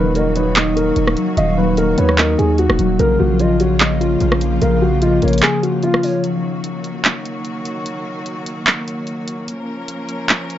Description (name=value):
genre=hip hop, trap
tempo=148 BPM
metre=4/4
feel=half-time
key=Eb minor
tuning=A4 = 439 Hz
part: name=dark concert grand piano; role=melody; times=0.0-6.2 s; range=F4 to Eb5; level=-19 LUFS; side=left 1 dB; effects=none
part: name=gliding portamento lead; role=second line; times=0.0-6.2 s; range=Bb4 to F5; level=-27 LUFS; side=right 2 dB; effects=chorus, tape echo
part: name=concert harp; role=accompaniment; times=0.0-9.0 s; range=Db3 to Eb5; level=-19 LUFS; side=left 2 dB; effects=none
part: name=clear studio string section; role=sustained chords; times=0.0-10.6 s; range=Db3 to Bb4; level=-27 LUFS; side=equal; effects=none
part: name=hard-hitting 808-style bass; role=bass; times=0.0-5.4 s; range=Eb1 to Eb2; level=-18 LUFS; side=right 1 dB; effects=none
part: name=trap drum kit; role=drums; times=0.2-10.6 s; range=handclaps, hi-hat, rim click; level=-17 LUFS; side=right 1 dB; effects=overdrive, vintage 12-bit sampler grit
room=moderate small room reverb, RT60 0.5 s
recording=dark, warm production, nothing above 7.6 kHz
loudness=-14 LUFS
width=side -12 dB against mid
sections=0.0-6.2 A section; 6.2-10.6 B section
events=kick muted 5.4-6.2; break 6.2-10.6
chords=0.0 Ebm; 3.0 Bbm; 6.2 Ebm; 9.5 Bbm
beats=0.16 0.56 0.97 | 1.37 1.78 2.18 2.59 | 2.99 3.40 3.81 4.21 | 4.62 5.02 5.43 5.83 | 6.24 6.64 7.05 7.45 | 7.86 8.26 8.67 9.07 | 9.48 9.89 10.29